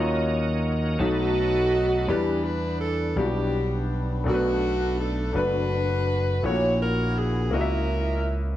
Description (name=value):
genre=gospel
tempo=55 BPM (dotted quarters)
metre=6/8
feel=straight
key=E minor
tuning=A4 = 440 Hz
part: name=clear concert grand piano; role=accompaniment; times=0.0-8.6 s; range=A#2 to E5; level=-29 LUFS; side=left 3 dB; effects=none
part: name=bright tonewheel organ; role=sustained chords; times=0.0-2.1 s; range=Gb3 to Bb4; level=-30 LUFS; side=right 3 dB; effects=slow rotary speaker, overdrive, chorus vibrato
part: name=vintage slap bass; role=bass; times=0.0-8.6 s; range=F#1 to E2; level=-26 LUFS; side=equal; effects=none
part: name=dark saxophone section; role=melody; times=1.0-8.4 s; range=A3 to C#5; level=-26 LUFS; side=equal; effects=none
room=moderate large studio reverb, RT60 0.8 s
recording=band playing live in one room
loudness=-22 LUFS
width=side -13 dB against mid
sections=0.0-2.1 A section; 2.1-8.6 B section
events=grand piano solo 0.0-2.1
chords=0.0 Ebm7; 1.0 B7; 2.1 Em7; 4.3 Bm7; 6.4 F#7/A#